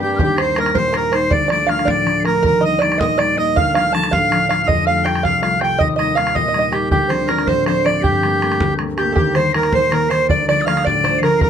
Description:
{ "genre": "celtic folk, Celtic jig", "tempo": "107 BPM (dotted quarters)", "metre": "6/8", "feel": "straight", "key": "unclear", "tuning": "A4 = 440 Hz", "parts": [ { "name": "accordion", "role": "melody", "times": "0.0-11.5 s", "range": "G4 to A5", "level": "-18 LUFS", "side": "right 4 dB", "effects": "none" }, { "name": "mellow hollow tin whistle", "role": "second line", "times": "0.0-11.5 s", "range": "Eb6 to D7", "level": "-24 LUFS", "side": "left 8 dB", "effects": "none" }, { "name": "open-back banjo", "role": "second line", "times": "0.0-11.5 s", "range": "G4 to A5", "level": "-22 LUFS", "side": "right 5 dB", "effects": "none" }, { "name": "concert harp", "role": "accompaniment", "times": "0.0-11.5 s", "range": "C2 to F4", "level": "-20 LUFS", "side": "left 4 dB", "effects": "none" }, { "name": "bodhran", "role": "percussion", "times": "0.2-11.5 s", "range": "none", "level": "-22 LUFS", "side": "right 1 dB", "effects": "none" } ], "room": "light reverb", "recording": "none", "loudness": "-14 LUFS", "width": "side -8 dB against mid", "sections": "0.2-9.2 A section; 9.2-11.5 A section", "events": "none", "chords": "0.2 Eb; 1.3 Dm; 2.4 Eb; 3.6 Dm; 4.7 Fadd9; 5.8 Eb; 6.9 Dm7; 8.0 Gmadd9; 9.2 Eb; 10.3 Dm" }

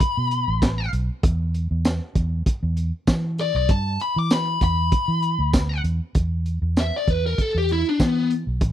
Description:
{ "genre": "straight-eighth soul blues", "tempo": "98 BPM", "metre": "4/4", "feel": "swing 54% on 16ths", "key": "E minor", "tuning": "A4 = 440 Hz", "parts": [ { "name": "biting lead guitar", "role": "melody", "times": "0.0-8.3 s", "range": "B3 to D6", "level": "-23 LUFS", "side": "left 3 dB", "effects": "overdrive" }, { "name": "crunchy breakbeat drum kit", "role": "drums", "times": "0.0-8.7 s", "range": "hi-hat, kick drum, snare drum, tambourine", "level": "-21 LUFS", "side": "equal", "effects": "none" }, { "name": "vintage muted fingered electric bass", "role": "bass", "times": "0.2-8.7 s", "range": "A1 to E3", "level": "-23 LUFS", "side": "equal", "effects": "none" } ], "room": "studio reverb", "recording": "dry, close 1970s-style studio recording", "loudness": "-20 LUFS", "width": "side -11 dB against mid", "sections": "0.0-6.1 A section; 6.1-8.7 B section", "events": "lead electric guitar solo 0.0-6.1", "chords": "0.0 Asus2; 1.2 E5" }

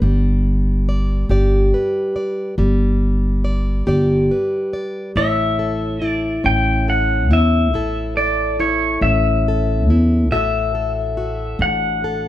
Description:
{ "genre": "acoustic folk duo or small band", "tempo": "47 BPM (dotted quarters)", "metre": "6/8", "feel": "straight", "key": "unclear", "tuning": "A4 = 438 Hz", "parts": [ { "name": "fingerpicked plugged-in steel-string acoustic guitar", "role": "accompaniment", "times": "0.0-12.3 s", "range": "A2 to D5", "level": "-22 LUFS", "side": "equal", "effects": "none" }, { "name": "upright bass", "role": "bass", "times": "0.0-12.3 s", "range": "G1 to E2", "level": "-18 LUFS", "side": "equal", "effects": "none" }, { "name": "pedal steel guitar", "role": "melody", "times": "5.2-12.3 s", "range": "C#5 to G5", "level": "-19 LUFS", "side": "left 2 dB", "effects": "none" } ], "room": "light reverb", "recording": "none", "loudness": "-15 LUFS", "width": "side -13 dB against mid", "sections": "0.0-5.2 A section; 5.2-12.3 B section", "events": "none", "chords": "0.0 G; 5.2 A; 10.3 Dadd9/A" }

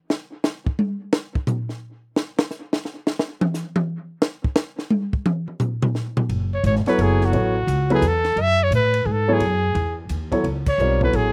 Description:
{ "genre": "modal jazz", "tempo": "174 BPM", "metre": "3/4", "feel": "swing 65% on 8ths", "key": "F# dorian", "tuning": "A4 = 442 Hz", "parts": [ { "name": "compact cocktail drum kit", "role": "drums", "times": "0.1-11.2 s", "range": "crash cymbal, hi-hat, kick drum, ride cymbal, snare drum, toms", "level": "-25 LUFS", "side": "equal", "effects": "none" }, { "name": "upright bass", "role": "bass", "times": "6.3-11.3 s", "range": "F#1 to A2", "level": "-24 LUFS", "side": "equal", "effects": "none" }, { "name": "warm trumpet", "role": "melody", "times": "6.5-11.3 s", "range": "F#4 to E5", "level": "-23 LUFS", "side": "equal", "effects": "none" }, { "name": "warm concert grand piano", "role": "accompaniment", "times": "6.9-11.3 s", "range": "F#3 to D5", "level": "-23 LUFS", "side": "equal", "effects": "none" } ], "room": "little or no reverb", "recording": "recorded outdoors, with no room sound", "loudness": "-22 LUFS", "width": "mono", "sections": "0.0-6.3 A section; 6.3-11.3 B section", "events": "drum solo 0.0-6.3; band accent 10.6", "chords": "0.0 N.C.; 6.3 F#m9" }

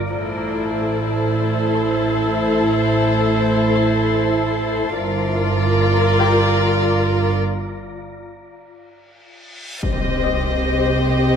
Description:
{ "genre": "cinematic, suspense film score", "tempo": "74 BPM", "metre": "3/4", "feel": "straight", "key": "unclear", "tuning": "A4 = 438 Hz", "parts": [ { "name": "wind-like tuned noise texture", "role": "sustained chords", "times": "0.0-11.4 s", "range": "E4 to Bb5", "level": "-26 LUFS", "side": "equal", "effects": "built-in reverb" }, { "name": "concert harp", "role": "texture", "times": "0.0-11.4 s", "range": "G4 to C6", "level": "-30 LUFS", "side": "left 10 dB", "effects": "none" }, { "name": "rich chamber violin section", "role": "melody", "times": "0.1-11.4 s", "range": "C5 to Eb5", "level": "-26 LUFS", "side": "equal", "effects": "none" }, { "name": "dark symphonic violin section", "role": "second line", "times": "0.1-11.4 s", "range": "A4 to C5", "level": "-23 LUFS", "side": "left 3 dB", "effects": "none" }, { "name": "warm chamber viola section", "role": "accompaniment", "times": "0.1-11.4 s", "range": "E4 to G4", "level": "-23 LUFS", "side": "equal", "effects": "none" }, { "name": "dark chamber double bass section", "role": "bass", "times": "0.1-11.4 s", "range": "G1 to C2", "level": "-24 LUFS", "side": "right 4 dB", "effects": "none" }, { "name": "warm chamber cello section", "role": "bass", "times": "0.1-11.4 s", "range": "G2 to C3", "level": "-23 LUFS", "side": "right 2 dB", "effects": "none" }, { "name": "reverse cymbal and impact", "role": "sound effects", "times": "9.5-11.4 s", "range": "none", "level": "-27 LUFS", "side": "left 2 dB", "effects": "none" } ], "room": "light reverb", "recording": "close, detailed microphones", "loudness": "-16 LUFS", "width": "side -7 dB against mid", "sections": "0.0-9.8 A section; 9.8-11.4 B section", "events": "break 7.4-9.8; reverse cymbal 9.5-9.8; impact 9.8-11.4", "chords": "0.1 Am; 5.0 Gm7; 9.8 Cm" }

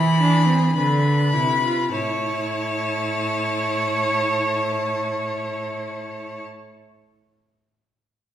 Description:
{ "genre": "classical, baroque-style fugue for string quartet", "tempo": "50 BPM", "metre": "4/4", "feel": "straight", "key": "unclear", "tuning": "A4 = 436 Hz", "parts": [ { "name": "rich violin", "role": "melody", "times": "0.0-6.4 s", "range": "A5 to B5", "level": "-27 LUFS", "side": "left 6 dB", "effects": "none" }, { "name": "rich violin", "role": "second line", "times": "0.0-6.4 s", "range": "G#4 to C#5", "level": "-25 LUFS", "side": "equal", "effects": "none" }, { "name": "rich viola", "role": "accompaniment", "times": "0.0-6.4 s", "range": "C4 to F4", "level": "-28 LUFS", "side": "equal", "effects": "none" }, { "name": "rich cello", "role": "bass", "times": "0.0-6.4 s", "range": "A2 to E3", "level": "-24 LUFS", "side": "right 2 dB", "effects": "none" } ], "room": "wet recital hall reverb, RT60 1.4 s", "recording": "heard from further back in the room", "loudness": "-19 LUFS", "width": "side -11 dB against mid", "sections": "0.0-1.9 A section; 1.9-6.7 B section", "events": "slowing down 0.0-1.9", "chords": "0.0 E7; 1.9 A" }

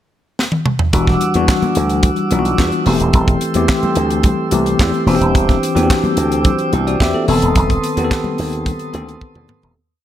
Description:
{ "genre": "disco", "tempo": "109 BPM", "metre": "4/4", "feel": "straight", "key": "E minor", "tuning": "A4 = 440 Hz", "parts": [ { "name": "tight funk drum kit", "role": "drums", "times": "0.4-9.8 s", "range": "handclaps, hi-hat, kick drum, snare drum, toms", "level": "-17 LUFS", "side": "right 1 dB", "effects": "none" }, { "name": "bell-like tine electric piano", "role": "accompaniment", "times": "0.9-9.8 s", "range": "D3 to E5", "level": "-17 LUFS", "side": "left 2 dB", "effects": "medium stereo tremolo" }, { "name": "mellow tonewheel organ", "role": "sustained chords", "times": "0.9-9.7 s", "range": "G3 to E6", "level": "-22 LUFS", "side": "right 4 dB", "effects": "slow rotary speaker" }, { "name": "slap bass with an envelope filter", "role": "bass", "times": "0.9-9.7 s", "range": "D#1 to E2", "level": "-18 LUFS", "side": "right 1 dB", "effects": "none" }, { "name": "congas", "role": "percussion", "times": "0.9-9.6 s", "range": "none", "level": "-25 LUFS", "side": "left 4 dB", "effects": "none" } ], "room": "light reverb, studio ambience", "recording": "none", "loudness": "-13 LUFS", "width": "side -11 dB against mid", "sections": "0.0-0.9 pickup bar; 0.9-9.8 verse", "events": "drum fill 0.4-0.9, 9.2-9.8; fade-out 7.6-9.8", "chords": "0.0 N.C.; 0.9 Em9; 2.9 Am7; 5.1 D9sus4; 7.3 B7b9" }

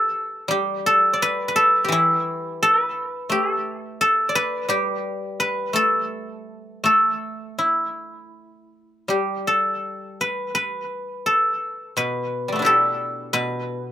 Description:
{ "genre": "chinese traditional, Chinese solo plucked strings", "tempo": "76-90 BPM", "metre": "4/4", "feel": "rubato", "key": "unclear", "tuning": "A4 = 440 Hz", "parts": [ { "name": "guzheng", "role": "solo", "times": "0.0-13.9 s", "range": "B2 to D5", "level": "-19 LUFS", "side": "equal", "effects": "slapback echo" } ], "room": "little or no reverb", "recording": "recorded outdoors, with no room sound", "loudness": "-19 LUFS", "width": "side -11 dB against mid", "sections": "0.0-13.9 A section", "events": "none", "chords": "none" }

